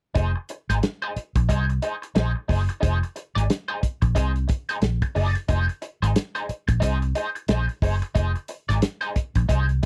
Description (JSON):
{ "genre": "funk", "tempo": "90 BPM", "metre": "4/4", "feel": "swing 60% on 16ths", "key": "F dorian", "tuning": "A4 = 440 Hz", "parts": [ { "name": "electric guitar at the edge of break-up", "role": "accompaniment", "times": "0.1-9.9 s", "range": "Eb4 to D5", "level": "-30 LUFS", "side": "equal", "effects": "wah" }, { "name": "vintage muted fingered electric bass", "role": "bass", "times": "0.2-9.8 s", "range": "F1 to C2", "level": "-25 LUFS", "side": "equal", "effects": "none" }, { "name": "warm soul drum kit", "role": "drums", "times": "0.2-9.9 s", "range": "hi-hat, kick drum, snare drum", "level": "-26 LUFS", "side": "equal", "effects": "none" } ], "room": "little or no reverb", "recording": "dry, close 1970s-style studio recording", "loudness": "-24 LUFS", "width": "mono", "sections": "0.1-9.9 A section", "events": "none", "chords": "0.1 Fm7 (rootless)", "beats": "| 0.15 0.82 1.48 2.15 | 2.82 3.49 4.16 4.82 | 5.49 6.16 6.83 7.49 | 8.16 8.83 9.49" }